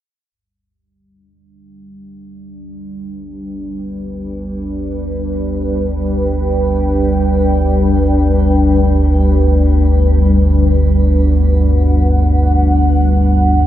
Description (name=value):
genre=dark ambient drone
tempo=free time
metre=none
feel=none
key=G major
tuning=A4 = 439 Hz
part: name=deep dark ambient pad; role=sustained chords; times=2.4-13.7 s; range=G3 to G5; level=-16 LUFS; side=equal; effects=chorus, built-in reverb, shimmer reverb
part: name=deep rumbling drone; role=drone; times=3.6-13.7 s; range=G1 to D2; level=-13 LUFS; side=equal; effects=built-in reverb, wide subtle chorus
room=wet huge ambient reverb, RT60 7.7 s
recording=none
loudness=-11 LUFS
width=side -12 dB against mid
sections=0.3-13.7 A section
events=fade-in on ambient pad 0.3-13.7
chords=0.3 G